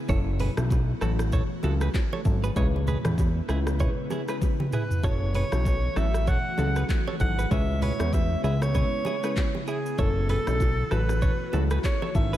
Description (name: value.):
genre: afrobeats.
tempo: 97 BPM.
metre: 4/4.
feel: swing 58% on 16ths.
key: F# minor.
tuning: A4 = 440 Hz.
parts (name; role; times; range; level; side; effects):
ethereal airy pad; sustained chords; 0.0-12.4 s; C#3 to F#4; -35 LUFS; equal; ensemble chorus, built-in reverb.
soft round pluck; accompaniment; 0.1-12.3 s; F#3 to B4; -34 LUFS; left 3 dB; chorus.
direct-recorded clean electric guitar; riff; 0.1-12.4 s; E4 to C#5; -36 LUFS; right 5 dB; diffuse ambient delay.
fat analog bass; bass; 0.1-12.4 s; F#1 to E2; -26 LUFS; equal; none.
afro-pop drum kit; drums; 0.1-12.4 s; handclaps, hi-hat, kick drum, rim click, shaker, toms; -28 LUFS; equal; none.
congas and bongos; percussion; 0.1-12.1 s; none; -35 LUFS; right 2 dB; none.
breathy alto saxophone; melody; 4.7-12.4 s; G#4 to F#5; -31 LUFS; right 1 dB; diffuse ambient delay.
room: light reverb.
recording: none.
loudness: -23 LUFS.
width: side -13 dB against mid.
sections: 0.0-12.4 A section.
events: drum fill 4.4-5.0.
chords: 0.1 F#m7; 2.6 C#m7; 5.0 F#m7; 7.5 C#m7; 10.0 F#m7.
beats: | 0.09 0.70 1.32 1.94 | 2.56 3.18 3.80 4.42 | 5.04 5.65 6.27 6.89 | 7.51 8.13 8.75 9.37 | 9.98 10.60 11.22 11.84.